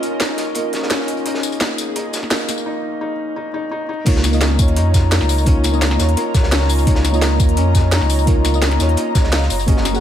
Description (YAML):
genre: liquid drum and bass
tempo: 171 BPM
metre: 4/4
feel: straight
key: Db major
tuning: A4 = 440 Hz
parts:
  - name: mellow FM electric piano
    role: accompaniment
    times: 0.0-10.0 s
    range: Bb3 to Gb5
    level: -24 LUFS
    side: left 1 dB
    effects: chorus, ping-pong delay
  - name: airy breathy pad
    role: sustained chords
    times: 0.0-10.0 s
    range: Db4 to Bb5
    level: -25 LUFS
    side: equal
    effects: chorus, sidechain pumping
  - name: felt-muted upright piano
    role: arpeggios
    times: 0.0-10.0 s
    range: Bb3 to F4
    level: -24 LUFS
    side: left 2 dB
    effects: dub echo
  - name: crunchy breakbeat drum kit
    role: drums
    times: 0.0-10.0 s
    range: hi-hat, snare drum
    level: -27 LUFS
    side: right 1 dB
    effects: high-pass filter on hats, high-pass filter on snare, high-pass filter on room
  - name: drum and bass drum kit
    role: drums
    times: 0.0-10.0 s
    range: crash cymbal, hi-hat, snare drum, tambourine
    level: -22 LUFS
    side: left 1 dB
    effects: none
  - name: warm sub bass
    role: bass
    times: 4.1-10.0 s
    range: Gb1 to F2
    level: -16 LUFS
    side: equal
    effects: tube saturation
  - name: electronic kick drum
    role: drums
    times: 4.1-9.8 s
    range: none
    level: -16 LUFS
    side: equal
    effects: none
room: light reverb, studio ambience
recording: none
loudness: -14 LUFS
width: side -10 dB against mid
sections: 0.0-4.1 A section; 4.1-10.0 B section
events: build-up 0.0-4.1; break 2.7-4.1; drop 4.1-10.0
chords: 0.0 Db69; 3.9 N.C.; 4.1 Db69; 9.5 Gb69